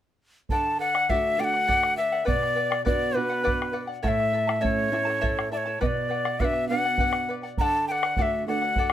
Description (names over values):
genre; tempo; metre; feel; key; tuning
andean folk, Andean ensemble; 68 BPM (dotted quarters); 6/8; straight; unclear; A4 = 439 Hz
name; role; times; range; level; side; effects
breathy hollow quena; melody; 0.5-8.9 s; B4 to A#5; -24 LUFS; left 2 dB; none
charango; accompaniment; 0.5-8.9 s; E4 to A5; -32 LUFS; left 2 dB; none
nylon-string guitar; accompaniment; 0.5-8.9 s; A2 to F#4; -31 LUFS; right 5 dB; none
bombo; percussion; 0.5-8.9 s; none; -29 LUFS; right 1 dB; none
room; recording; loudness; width
light reverb; minimal, uncompressed stereo recording; -22 LUFS; side -11 dB against mid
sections
0.5-8.9 A section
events
none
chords
0.5 D; 2.3 Bm; 4.0 A; 5.8 Bm; 7.6 D